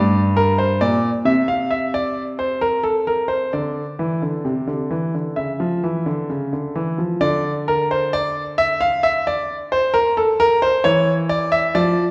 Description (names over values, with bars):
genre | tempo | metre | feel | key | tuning
classical, baroque-style two-part invention for grand piano | 66 BPM | 4/4 | straight | D minor | A4 = 440 Hz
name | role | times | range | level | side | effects
warm grand piano | solo | 0.0-12.0 s | G2 to F5 | -20 LUFS | equal | none
room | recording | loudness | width
wet recital hall reverb, RT60 1.4 s | recorded in a church or concert hall | -20 LUFS | mono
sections
0.0-7.2 A section; 7.2-12.1 B section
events
none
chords
0.0 Em7b5/G; 3.5 Cadd9; 5.4 C#m; 7.2 Dm; 9.0 Bbmaj9/D; 10.8 Dmadd9/E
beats
0.80 1.70 2.60 | 3.52 4.45 5.38 6.30 | 7.23 8.14 9.05 9.95 | 10.84 11.74